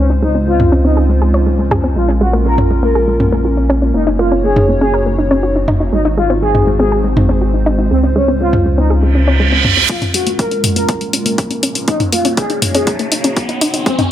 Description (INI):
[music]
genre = melodic techno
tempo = 121 BPM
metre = 4/4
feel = straight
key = Bb minor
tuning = A4 = 436 Hz
[part]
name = expressive synth lead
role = melody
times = 0.0-14.0 s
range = C4 to Bb4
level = -18 LUFS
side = equal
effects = wide subtle chorus, sidechain pumping, tape echo
[part]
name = dark analog pad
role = sustained chords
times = 0.0-14.1 s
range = Ab3 to Db5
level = -19 LUFS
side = equal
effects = chorus, sidechain pumping
[part]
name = analog pluck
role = arpeggios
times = 0.0-14.0 s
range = Ab3 to Db5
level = -18 LUFS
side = left 1 dB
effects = chorus, cassette tape, sidechain pumping, dub echo
[part]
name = dark detuned saw bass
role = bass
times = 0.0-13.8 s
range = Gb1 to Db2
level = -16 LUFS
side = equal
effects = sidechain pumping, high-pass filter
[part]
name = punchy analog drum machine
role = drums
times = 0.6-14.1 s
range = hi-hat, toms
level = -17 LUFS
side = equal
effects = overdrive, small room ambience
[part]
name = reverse cymbal and riser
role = sound effects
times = 9.1-14.1 s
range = none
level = -18 LUFS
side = right 4 dB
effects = none
[part]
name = electronic kick drum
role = drums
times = 9.9-14.0 s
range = none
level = -18 LUFS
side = equal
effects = high-pass filter on kick, small room ambience
[sound]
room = light reverb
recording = none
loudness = -11 LUFS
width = side -11 dB against mid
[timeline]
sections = 0.0-9.9 A section; 9.9-14.1 B section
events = reverse cymbal 9.1-9.9; build-up 9.9-14.1; riser 9.9-14.1; filter sweep on synth arpeggio sound 9.9-14.1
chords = 0.0 Dbmaj7; 2.0 Bbm7; 3.9 Gb6; 5.9 Ab7; 7.9 Dbmaj7; 9.9 Bbm7; 11.9 Gb6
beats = 0.47 0.97 1.47 | 1.96 2.46 2.95 3.45 | 3.94 4.44 4.94 5.43 | 5.93 6.42 6.92 7.42 | 7.91 8.41 8.90 9.40 | 9.89 10.39 10.89 11.38 | 11.88 12.38 12.87 13.37 | 13.86